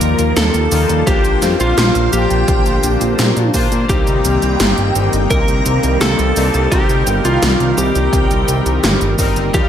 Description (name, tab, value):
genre	synthwave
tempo	85 BPM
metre	4/4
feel	straight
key	C dorian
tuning	A4 = 440 Hz
part	lightly driven lead guitar	melody	0.0-9.7 s	F4 to Bb4	-19 LUFS	equal	ping-pong delay, shimmer reverb
part	string machine, violins	second line	0.0-9.7 s	F5 to Bb5	-24 LUFS	right 1 dB	ensemble chorus, shimmer reverb
part	phased analog pad	sustained chords	0.0-9.7 s	D3 to G4	-22 LUFS	right 1 dB	phaser, chorus, sidechain pumping, shimmer reverb
part	analog synth brass	stabs	0.0-9.7 s	G3 to C5	-21 LUFS	left 4 dB	chorus, shimmer reverb
part	fat analog bass	bass	0.0-9.7 s	G1 to Bb2	-17 LUFS	equal	sidechain pumping
part	80s electronic pad drums	drums	0.0-9.7 s	cabasa, hi-hat, snare drum	-19 LUFS	equal	overdrive, gated reverb
part	electronic kick drum	drums	1.1-9.7 s	none	-18 LUFS	equal	overdrive
room	moderate recital hall reverb, RT60 1.6 s, digital ambience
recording	none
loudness	-12 LUFS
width	side -9 dB against mid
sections	0.0-9.7 A section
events	none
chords	0.0 Ebadd9; 1.1 Bbadd9; 3.9 Cm7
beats	0.36 | 1.07 1.77 2.48 3.19 | 3.89 4.60 5.30 6.01 | 6.72 7.42 8.13 8.83 | 9.54